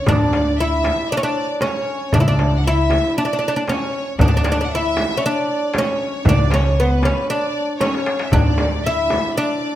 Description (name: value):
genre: Arabic maqam ensemble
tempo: 116 BPM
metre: 4/4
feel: straight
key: unclear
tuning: A4 = 440 Hz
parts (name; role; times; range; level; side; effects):
- oud; melody; 0.0-9.8 s; B3 to E4; -20 LUFS; left 1 dB; none
- clear studio violin section; second line; 0.0-9.8 s; B4 to F#5; -25 LUFS; equal; none
- upright bass; bass; 0.1-9.2 s; C#2 to D2; -19 LUFS; equal; none
- darbuka; percussion; 0.1-9.2 s; none; -23 LUFS; left 2 dB; none
- frame drum; percussion; 0.1-9.2 s; none; -24 LUFS; right 2 dB; none
room: moderate recital hall reverb, RT60 1.5 s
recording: none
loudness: -16 LUFS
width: side -12 dB against mid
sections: 0.1-9.8 A section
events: drum fill 7.8-8.3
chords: none